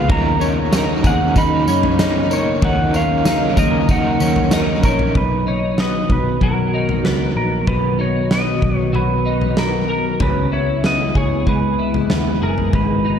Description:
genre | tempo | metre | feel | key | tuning
dream pop | 95 BPM | 4/4 | straight | B major from 5.1 s | A4 = 440 Hz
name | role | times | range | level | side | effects
pedal steel guitar | melody | 0.0-13.2 s | A#4 to B5 | -22 LUFS | right 2 dB | tape echo
overdriven semi-hollow guitar | accompaniment | 0.0-5.2 s | D#3 to A#4 | -23 LUFS | right 2 dB | tremolo, wide subtle chorus
warbly tape-like pad | sustained chords | 0.0-13.2 s | C#3 to F#4 | -23 LUFS | equal | chorus, built-in reverb
twelve-string electric guitar | arpeggios | 0.0-13.2 s | G#2 to A#4 | -23 LUFS | left 3 dB | ensemble chorus, tape echo
vintage muted picked electric bass | bass | 0.0-13.2 s | F#1 to F#2 | -22 LUFS | equal | none
huge arena drum kit | drums | 0.1-12.9 s | kick drum, snare drum, tambourine, toms | -20 LUFS | equal | none
room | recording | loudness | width
moderate plate reverb, RT60 2.6 s | echo-heavy mix | -15 LUFS | side -8 dB against mid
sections
0.0-5.1 A section; 5.1-13.2 B section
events
none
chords
0.1 Bmaj9; 2.6 D#m7; 5.1 Bmaj7; 10.2 C#m7

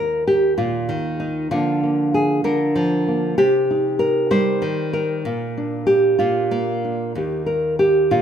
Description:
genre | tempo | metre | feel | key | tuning
folk, solo fingerstyle acoustic guitar | 64 BPM (dotted quarters) | 6/8 | rubato | Eb major | A4 = 440 Hz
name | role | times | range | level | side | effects
nylon-string guitar | solo | 0.0-8.2 s | Eb2 to C5 | -17 LUFS | equal | none
room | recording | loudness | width
light reverb | minimal, uncompressed stereo recording | -17 LUFS | side -8 dB against mid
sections
0.0-8.2 A section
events
none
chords
0.0 Eb; 1.5 Bb/D; 3.4 Cm; 5.2 Bb; 7.1 Eb

